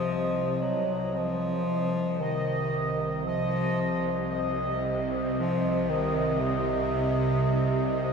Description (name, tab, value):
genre	dark ambient drone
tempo	57 BPM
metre	4/4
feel	straight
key	C minor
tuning	A4 = 439 Hz
part	clear bass clarinet	melody	0.0-8.1 s	C3 to F#3	-29 LUFS	left 1 dB	ping-pong delay
part	bowed-like drone	drone	0.0-8.1 s	C2 to C3	-29 LUFS	right 1 dB	built-in reverb
part	bubbling stepped-filter texture	texture	0.0-8.1 s	Eb5	-31 LUFS	right 2 dB	chorus, built-in reverb
room	wet lush hall reverb, RT60 2.6 s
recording	dreamy mix soaked in reverb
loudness	-25 LUFS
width	side -5 dB against mid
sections	0.0-8.1 A section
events	none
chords	0.0 Cmadd11